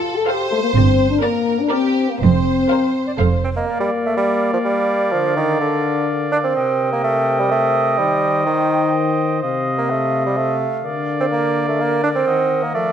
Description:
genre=cinematic, playful, whimsical film cue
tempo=126 BPM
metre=3/4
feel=straight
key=Bb major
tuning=A4 = 441 Hz
part: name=rich studio violin section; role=melody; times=0.0-3.4 s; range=G4 to C5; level=-24 LUFS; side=left 1 dB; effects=none
part: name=rich studio violin section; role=second line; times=0.0-3.6 s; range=Bb4 to F5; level=-27 LUFS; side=left 1 dB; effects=none
part: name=rich studio viola section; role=accompaniment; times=0.0-3.6 s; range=A4 to C5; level=-27 LUFS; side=right 3 dB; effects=none
part: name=dark French horn section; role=sustained chords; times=0.0-12.9 s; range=C3 to A4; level=-21 LUFS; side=left 4 dB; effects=none
part: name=rich studio double bass section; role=bass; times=0.7-3.6 s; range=F1 to G1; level=-19 LUFS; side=right 4 dB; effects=none
part: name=rich studio cello section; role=bass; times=0.8-3.6 s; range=F2 to G2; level=-19 LUFS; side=right 5 dB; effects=none
part: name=mellow clarinet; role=second line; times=2.7-12.9 s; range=Bb4 to Eb5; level=-27 LUFS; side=left 1 dB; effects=none
part: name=clear bassoon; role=accompaniment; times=3.4-12.9 s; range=D3 to D4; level=-19 LUFS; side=right 3 dB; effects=none
part: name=clear oboe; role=second line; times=3.7-12.9 s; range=D5 to Eb5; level=-24 LUFS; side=right 3 dB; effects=none
part: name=concert flute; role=second line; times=3.7-12.9 s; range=F5 to G5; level=-27 LUFS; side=left 1 dB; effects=none
room=moderate scoring stage reverb, RT60 1.8 s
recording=close, detailed microphones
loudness=-15 LUFS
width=side -8 dB against mid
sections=0.0-3.7 A section; 3.7-12.9 B section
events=none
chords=0.0 F; 0.7 Gm; 2.2 Fsus4; 3.2 F; 3.7 Bb; 5.1 Bb/D; 6.6 Cm7; 8.0 Cm/Eb; 9.4 F7/C; 10.8 Bb/D; 12.3 Ebm

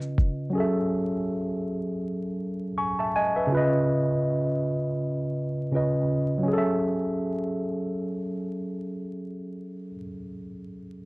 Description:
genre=hip hop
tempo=81 BPM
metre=4/4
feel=swing 58% on 16ths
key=F# dorian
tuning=A4 = 441 Hz
part: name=tine electric piano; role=accompaniment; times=0.0-11.1 s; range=C#3 to C#6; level=-25 LUFS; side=equal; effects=medium stereo tremolo, cassette tape
room=moderate small room reverb, RT60 0.5 s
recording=worn, warbling old tape, cassette tape, vinyl crackle, warbly pitch drift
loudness=-24 LUFS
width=side -23 dB against mid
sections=0.0-6.5 A section; 6.5-9.4 B section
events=none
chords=0.0 C#9; 0.5 F#m9; 3.5 C#9; 6.5 F#m9

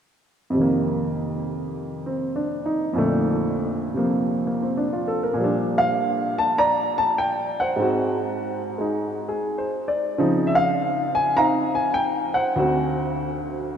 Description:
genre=solo jazz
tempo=100 BPM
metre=4/4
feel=swing 67% on 8ths, rubato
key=Bb major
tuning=A4 = 442 Hz
part: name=warm upright piano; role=solo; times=0.5-13.8 s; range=D2 to Bb5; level=-20 LUFS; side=equal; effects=none
room=wet cathedral reverb, RT60 5.0 s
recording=in a vast, echoing space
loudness=-20 LUFS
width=side -8 dB against mid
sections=0.5-5.4 A section; 5.4-13.8 B section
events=none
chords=0.5 F7sus4; 3.0 Bbmaj7/F; 5.4 Bb6; 7.8 Ab7; 10.2 Dbmaj9; 12.6 D7

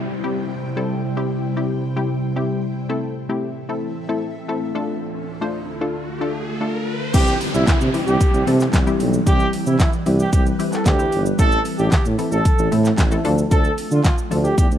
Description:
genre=dance-pop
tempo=113 BPM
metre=4/4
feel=straight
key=unclear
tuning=A4 = 440 Hz
part: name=punchy chord stab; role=accompaniment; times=0.0-14.6 s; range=E3 to C5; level=-25 LUFS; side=left 3 dB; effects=chorus, sidechain pumping
part: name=glassy FM pad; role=sustained chords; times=0.0-14.8 s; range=D2 to G5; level=-26 LUFS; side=equal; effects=ensemble chorus, built-in reverb, sidechain pumping
part: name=downlifter and riser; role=sound effects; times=0.0-11.4 s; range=none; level=-32 LUFS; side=equal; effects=none
part: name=warm horn section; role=melody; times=7.1-14.7 s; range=E4 to A4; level=-23 LUFS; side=right 2 dB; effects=sidechain pumping, tape echo
part: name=warm tuba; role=bass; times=7.1-14.8 s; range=G1 to D3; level=-19 LUFS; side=right 1 dB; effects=sidechain pumping
part: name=pop drum kit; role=drums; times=7.1-14.8 s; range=crash cymbal, handclaps, hi-hat, kick drum, shaker, snare drum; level=-18 LUFS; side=equal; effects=none
room=digital ambience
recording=dry, close 1970s-style studio recording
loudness=-17 LUFS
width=side -10 dB against mid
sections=0.0-7.1 A section; 7.1-14.8 B section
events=riser 4.7-7.1; drop 7.1-14.8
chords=0.0 C; 2.9 Am; 4.8 Dm; 7.1 C; 11.4 Am; 13.2 Dm

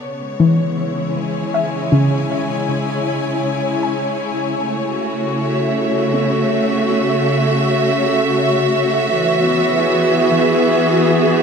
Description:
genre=ambient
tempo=79 BPM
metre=3/4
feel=straight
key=unclear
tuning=A4 = 442 Hz
part: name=rich studio string section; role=sustained chords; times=0.0-11.4 s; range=C#3 to G#5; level=-15 LUFS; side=equal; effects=none
part: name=soft round pluck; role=arpeggios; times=0.0-11.4 s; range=C#3 to G#5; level=-20 LUFS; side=left 1 dB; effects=lush chorus, tape echo
room=wet cathedral reverb, RT60 5.7 s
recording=none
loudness=-14 LUFS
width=side -6 dB against mid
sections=0.0-11.4 A section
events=fade-in on string section 0.0-11.4; fade-out on synth pluck 0.0-11.4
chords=0.0 C#m; 4.6 Amaj13/C#; 9.2 Eadd9

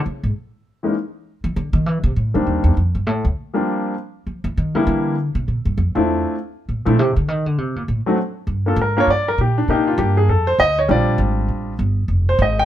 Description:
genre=jazz piano trio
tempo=199 BPM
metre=4/4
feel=swing 63% on 8ths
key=D minor, G minor from 8.5 s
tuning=A4 = 440 Hz
part: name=upright bass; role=bass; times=0.0-12.7 s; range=F1 to F3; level=-18 LUFS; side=equal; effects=none
part: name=clear baby grand piano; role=melody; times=0.8-12.7 s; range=Eb3 to G5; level=-18 LUFS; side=left 1 dB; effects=none
room=light reverb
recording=none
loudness=-17 LUFS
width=side -12 dB against mid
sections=0.0-8.5 A section; 8.5-12.7 A section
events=upright bass solo 0.0-8.5; grand piano solo 8.5-12.7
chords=0.0 G#sus4; 1.2 Fmaj7; 2.4 Cm9; 3.0 F6 (rootless); 3.7 Bb69; 4.9 Em7b5; 5.5 Bb5; 6.1 Dm7; 7.3 Bbadd9; 7.9 D (rootless); 8.5 Gm; 9.7 Cm9; 10.3 Dm; 10.9 Bb69; 12.1 Fm

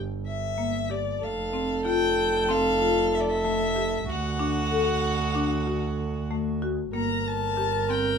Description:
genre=contemporary instrumental, chamber music in an uneven meter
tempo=189 BPM (eighths)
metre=9/8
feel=straight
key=unclear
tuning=A4 = 440 Hz
part: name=marimba with medium hard mallets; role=arpeggios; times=0.0-8.2 s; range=A3 to A4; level=-30 LUFS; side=left 5 dB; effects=none
part: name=clear double bass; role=bass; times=0.0-8.2 s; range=F1 to D2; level=-30 LUFS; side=right 4 dB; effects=none
part: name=warm violin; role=melody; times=0.3-8.2 s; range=D5 to Bb5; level=-29 LUFS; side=left 5 dB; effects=none
part: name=dark viola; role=second line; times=1.2-8.2 s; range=F#4 to Bb4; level=-28 LUFS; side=right 2 dB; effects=none
room=wet studio reverb, RT60 0.6 s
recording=none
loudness=-23 LUFS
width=side -6 dB against mid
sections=0.0-6.9 A section; 6.9-8.2 B section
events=none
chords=0.0 Gm; 1.2 Fmaj7; 4.1 D; 6.9 C7(no3)/G

